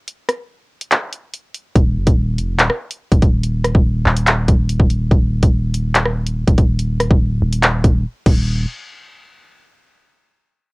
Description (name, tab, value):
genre	hip hop, drill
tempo	143 BPM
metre	4/4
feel	half-time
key	unclear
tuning	A4 = 440 Hz
part	drill drum kit	drums	0.1-8.4 s	crash cymbal, handclaps, hi-hat, kick drum, rim click	-14 LUFS	equal	cassette tape
part	long sustained 808-style bass	bass	1.8-8.6 s	D1 to Gb1	-17 LUFS	equal	none
room	little or no reverb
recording	home recording on cassette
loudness	-14 LUFS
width	side -29 dB against mid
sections	0.0-8.5 A section; 8.5-10.1 B section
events	break 0.0-1.8, 8.0-8.5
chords	none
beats	| 0.08 0.50 0.92 1.34 | 1.76 2.17 2.60 3.01 | 3.43 3.85 4.27 4.69 | 5.11 5.53 5.95 6.37 | 6.79 7.21 7.63 8.05 | 8.47